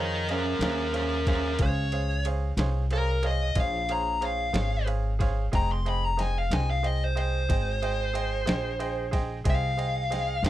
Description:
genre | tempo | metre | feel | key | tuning
slow blues | 61 BPM (dotted quarters) | 12/8 | straight | F minor | A4 = 439 Hz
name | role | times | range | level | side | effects
dark smooth lead guitar | melody | 0.0-10.5 s | Db4 to C6 | -29 LUFS | left 1 dB | overdrive
bright baby grand piano | accompaniment | 0.0-10.5 s | Ab4 to G5 | -34 LUFS | right 5 dB | none
upright bass | bass | 0.0-10.5 s | F1 to F2 | -28 LUFS | equal | none
boom bap sampler-style drum kit | drums | 0.3-10.5 s | kick drum, ride cymbal, snare drum | -29 LUFS | equal | none
room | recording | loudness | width
little or no reverb | dry, close 1970s-style studio recording | -25 LUFS | side -13 dB against mid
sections
0.0-10.5 A section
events
lead electric guitar solo 0.0-10.5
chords
0.0 Bbm7; 5.5 Fm7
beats
0.61 | 1.59 2.58 3.56 4.54 | 5.53 6.51 7.49 8.47 | 9.45 10.44

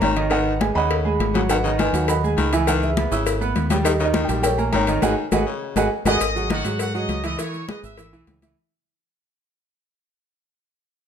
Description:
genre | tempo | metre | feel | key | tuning
latin, salsa | 204 BPM | 4/4 | straight | G# minor | A4 = 438 Hz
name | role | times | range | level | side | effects
felt-muted upright piano | melody | 0.0-6.2 s | G4 to B5 | -24 LUFS | right 2 dB | plate reverb, tape echo
breathy baritone saxophone | second line | 0.0-6.1 s | C#3 to D#3 | -27 LUFS | left 6 dB | none
clear grand piano | accompaniment | 0.0-8.5 s | D#3 to E6 | -25 LUFS | right 4 dB | none
deep dub fingered electric bass | bass | 0.0-8.5 s | G#1 to G#2 | -25 LUFS | equal | none
congas | percussion | 0.0-8.6 s | none | -26 LUFS | left 4 dB | none
cowbell | percussion | 0.0-8.6 s | none | -29 LUFS | left 7 dB | none
maracas | percussion | 1.5-8.6 s | none | -36 LUFS | right 8 dB | none
bright trumpet section | melody | 6.1-8.2 s | F#4 to E6 | -27 LUFS | left 2 dB | plate reverb
room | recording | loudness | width
moderate large studio reverb, RT60 0.9 s | none | -18 LUFS | side -8 dB against mid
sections
0.0-6.2 A section; 6.2-8.6 B section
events
band accent 5.0-6.2; fade-out 6.2-8.6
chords
0.3 G#m7; 2.7 C#m7; 3.9 D#7; 5.0 G#m7; 6.2 G#5; 7.4 C#m7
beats
0.02 | 0.32 0.61 0.91 1.20 | 1.49 1.79 2.08 2.38 | 2.67 2.97 3.26 3.56 | 3.85 4.15 4.44 4.74 | 5.03 5.33 5.62 5.91 | 6.21 6.50 6.80 7.09 | 7.39 7.68 7.98 8.27

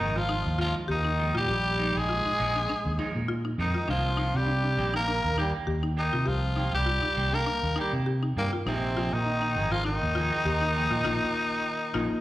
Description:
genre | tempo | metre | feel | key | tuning
afrobeat | 100 BPM | 4/4 | swing 54% on 16ths | unclear | A4 = 440 Hz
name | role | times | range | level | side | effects
raspy tenor saxophone | melody | 0.0-12.2 s | Bb3 to Bb4 | -29 LUFS | left 2 dB | slapback echo
growling trombone | second line | 0.0-12.2 s | Bb2 to Bb3 | -34 LUFS | right 2 dB | slapback echo
semi-hollow electric guitar | stabs | 0.0-12.1 s | Eb3 to Ab4 | -38 LUFS | right 5 dB | spring reverb, slapback echo
fingered electric bass | bass | 0.0-12.1 s | Ab1 to C3 | -29 LUFS | equal | none
marimba with medium hard mallets | arpeggios | 0.2-12.1 s | Bb3 to G4 | -35 LUFS | left 3 dB | none
room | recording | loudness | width
studio reverb | live gig heard through the venue's PA, recital hall reverb | -25 LUFS | side -15 dB against mid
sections
0.0-12.2 A section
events
band accent 11.1-12.2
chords
0.0 Bb7sus4; 3.9 Cm9; 8.7 Bb7sus4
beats
0.30 0.89 | 1.49 2.09 2.69 3.28 | 3.88 4.48 5.08 5.67 | 6.27 6.87 7.47 8.07 | 8.66 9.26 9.86 10.46 | 11.06 11.65

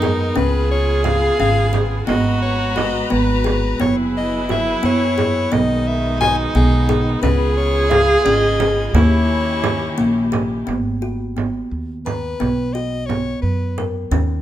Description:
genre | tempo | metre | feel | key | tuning
contemporary instrumental, chamber music in an uneven meter | 175 BPM (eighths) | 5/8 | straight | G# minor | A4 = 439 Hz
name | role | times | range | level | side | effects
warm soprano saxophone | melody | 0.0-13.9 s | G#4 to G#5 | -23 LUFS | left 5 dB | none
dark viola | second line | 0.0-10.3 s | D#4 to G#4 | -21 LUFS | right 2 dB | none
warm studio string section | sustained chords | 0.0-10.7 s | C#3 to A#5 | -27 LUFS | left 1 dB | none
kalimba | arpeggios | 0.0-14.4 s | A#3 to A#5 | -21 LUFS | left 1 dB | none
upright bass | bass | 0.0-14.4 s | F#1 to F#2 | -21 LUFS | right 1 dB | none
frame drum | percussion | 0.0-14.4 s | none | -25 LUFS | right 6 dB | none
room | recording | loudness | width
light reverb | close, detailed microphones | -15 LUFS | side -12 dB against mid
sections
0.0-10.7 A section; 10.7-14.4 B section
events
none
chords
0.4 C#7; 2.1 G#m9; 3.8 F#9sus4; 5.5 B6; 7.2 C#7; 8.9 D#7b9; 10.7 G#m7; 12.4 B5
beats
0.03 | 0.37 0.71 1.06 1.40 1.74 | 2.08 2.42 2.77 3.11 3.46 | 3.81 4.15 4.50 4.84 5.18 | 5.53 5.87 6.21 6.55 6.89 | 7.23 7.57 7.92 8.26 8.60 | 8.94 9.29 9.64 9.98 10.34 | 10.68 11.03 11.38 11.72 12.07 | 12.41 12.75 13.10 13.44 13.78 | 14.12

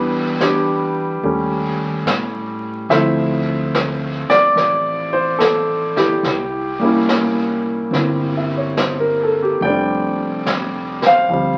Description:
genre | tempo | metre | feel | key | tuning
jazz ballad | 72 BPM | 4/4 | swing 67% on 8ths | F major | A4 = 439 Hz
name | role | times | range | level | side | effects
clear concert grand piano | accompaniment | 0.0-11.6 s | E3 to G5 | -19 LUFS | equal | none
upright bass | bass | 0.0-11.6 s | F1 to A2 | -29 LUFS | equal | none
vintage brush drum kit | drums | 0.4-11.6 s | brushed snare drum, hi-hat, snare drum | -26 LUFS | equal | none
room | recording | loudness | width
wet studio reverb, RT60 0.8 s | very old 78 rpm record, vinyl crackle | -18 LUFS | mono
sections
0.0-11.6 A section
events
none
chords
0.0 Em7; 1.2 Eb7#11; 2.9 Dm9; 6.2 C7b9; 9.6 F69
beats
0.39 1.23 2.06 | 2.89 3.73 4.57 5.40 | 6.24 7.08 7.92 8.76 | 9.61 10.45 11.29

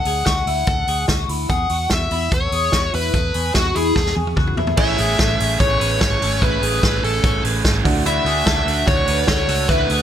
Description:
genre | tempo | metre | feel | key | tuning
jangly indie pop | 147 BPM | 4/4 | straight | A major | A4 = 440 Hz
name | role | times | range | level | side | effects
dark smooth lead guitar | melody | 0.0-10.0 s | F#4 to F#5 | -22 LUFS | left 1 dB | overdrive, plate reverb, tape echo
twelve-string electric guitar | arpeggios | 0.0-10.0 s | E4 to C#5 | -24 LUFS | left 3 dB | phaser
vintage muted fingered electric bass | bass | 0.0-10.0 s | G#1 to E2 | -23 LUFS | equal | none
vintage drum kit | drums | 0.1-10.0 s | crash cymbal, hi-hat, kick drum, snare drum, toms | -20 LUFS | equal | none
clear upright piano | accompaniment | 4.8-10.0 s | D4 to G#5 | -30 LUFS | right 4 dB | none
crunchy overdriven guitar | accompaniment | 4.8-10.0 s | A2 to G#4 | -23 LUFS | right 6 dB | none
room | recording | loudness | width
light reverb | none | -16 LUFS | side -9 dB against mid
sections
0.0-4.8 A section; 4.8-10.0 B section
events
drum fill 4.0-4.8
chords
0.0 D; 1.5 Eadd9; 4.8 Amaj7; 7.8 Dadd9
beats
0.27 0.68 1.09 | 1.50 1.91 2.32 2.73 | 3.14 3.55 3.96 4.37 | 4.78 5.19 5.60 6.01 | 6.42 6.83 7.24 7.64 | 8.05 8.46 8.87 9.28 | 9.69

